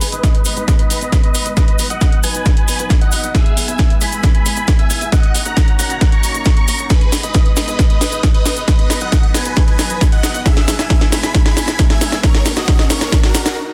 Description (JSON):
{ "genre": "uplifting trance", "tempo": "135 BPM", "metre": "4/4", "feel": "straight", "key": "G# minor", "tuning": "A4 = 441 Hz", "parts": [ { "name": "big supersaw lead", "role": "melody", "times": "0.0-13.6 s", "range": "F#4 to C#6", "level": "-25 LUFS", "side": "equal", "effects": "sidechain pumping, low-pass filter, dub echo" }, { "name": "lush unison pad", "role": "sustained chords", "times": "0.0-13.6 s", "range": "F#3 to E5", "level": "-30 LUFS", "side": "equal", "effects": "chorus, phaser, sidechain pumping" }, { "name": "tight sequencer bass", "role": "bass", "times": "0.0-13.5 s", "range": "D#1 to G#2", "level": "-35 LUFS", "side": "equal", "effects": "none" }, { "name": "techno drum kit", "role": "drums", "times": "0.0-13.5 s", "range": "hi-hat, snare drum", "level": "-22 LUFS", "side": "equal", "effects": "sidechain pumping on hats" }, { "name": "cabasa", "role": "percussion", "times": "0.0-13.5 s", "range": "none", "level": "-28 LUFS", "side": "equal", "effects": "none" }, { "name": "electronic kick drum", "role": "drums", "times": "0.2-13.2 s", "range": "none", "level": "-16 LUFS", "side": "equal", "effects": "none" }, { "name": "riser", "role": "sound effects", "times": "9.5-13.6 s", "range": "none", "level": "-36 LUFS", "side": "equal", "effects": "none" } ], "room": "digital ambience", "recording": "dense, heavily limited modern master", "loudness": "-14 LUFS", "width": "mono", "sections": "0.0-13.7 A section", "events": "build-up 0.0-13.7; drum fill 0.0-13.6; filter sweep on supersaw synth 0.0-13.7; stop 13.6", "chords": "0.0 G#m; 1.6 B; 3.3 E; 5.1 D#m7; 6.9 G#m; 8.7 B; 10.5 E; 12.2 D#m7", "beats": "0.23 0.68 1.12 | 1.57 2.01 2.46 2.90 | 3.35 3.79 4.24 4.68 | 5.12 5.57 6.01 6.46 | 6.90 7.35 7.79 8.23 | 8.68 9.12 9.57 10.01 | 10.46 10.90 11.35 11.79 | 12.23 12.68 13.12 13.57" }